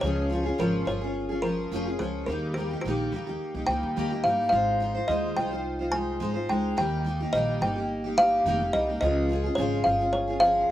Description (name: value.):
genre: acoustic pop.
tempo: 107 BPM.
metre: 4/4.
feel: straight.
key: Eb mixolydian.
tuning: A4 = 440 Hz.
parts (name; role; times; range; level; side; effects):
kalimba; melody; 0.0-10.7 s; G4 to Ab5; -26 LUFS; equal; slapback echo.
picked steel-string acoustic guitar; accompaniment; 0.0-10.7 s; Db3 to C5; -29 LUFS; equal; double-tracked left and right.
upright bass; bass; 0.0-10.7 s; F1 to Eb2; -32 LUFS; equal; none.
room: little or no reverb.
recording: recorded outdoors, with no room sound.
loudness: -24 LUFS.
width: side -13 dB against mid.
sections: 0.0-10.7 A section.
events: none.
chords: 0.0 Db; 2.3 Eb; 4.5 Ab6; 6.8 Eb; 9.0 Db.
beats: | 0.04 0.60 1.16 1.73 | 2.29 2.85 3.41 3.97 | 4.53 5.09 5.66 6.22 | 6.78 7.34 7.90 8.46 | 9.02 9.58 10.14 10.70.